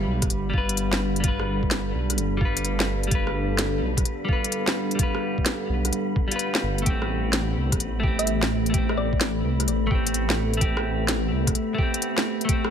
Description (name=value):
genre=future garage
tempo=128 BPM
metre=4/4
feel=swing 66% on 16ths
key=unclear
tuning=A4 = 438 Hz
part: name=semi-hollow electric guitar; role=accompaniment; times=0.0-12.7 s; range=G3 to B4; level=-29 LUFS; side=left 1 dB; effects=sidechain pumping, ping-pong delay
part: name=deep dark ambient pad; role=sustained chords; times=0.0-12.7 s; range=G3 to B5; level=-30 LUFS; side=equal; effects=chorus, built-in reverb, vintage 12-bit sampler grit, sidechain pumping
part: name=dark detuned saw bass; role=bass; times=0.0-11.5 s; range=G1 to C2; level=-27 LUFS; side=equal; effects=sidechain pumping
part: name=wind-like tuned noise texture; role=texture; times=0.1-12.7 s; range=B3 to B5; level=-37 LUFS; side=equal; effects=built-in reverb
part: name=electronic kick drum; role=drums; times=0.2-12.6 s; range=none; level=-25 LUFS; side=equal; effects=none
part: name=organic electronic drum kit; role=drums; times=0.2-12.7 s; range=hi-hat, rim click, snare drum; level=-26 LUFS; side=equal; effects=none
part: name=thumb-piano-like synth pluck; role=melody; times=8.2-9.4 s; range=D5 to E5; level=-32 LUFS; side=right 1 dB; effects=chorus, ping-pong delay
room=light reverb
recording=none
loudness=-22 LUFS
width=side -8 dB against mid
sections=0.0-12.7 A section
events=none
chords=0.0 G7; 6.9 Am7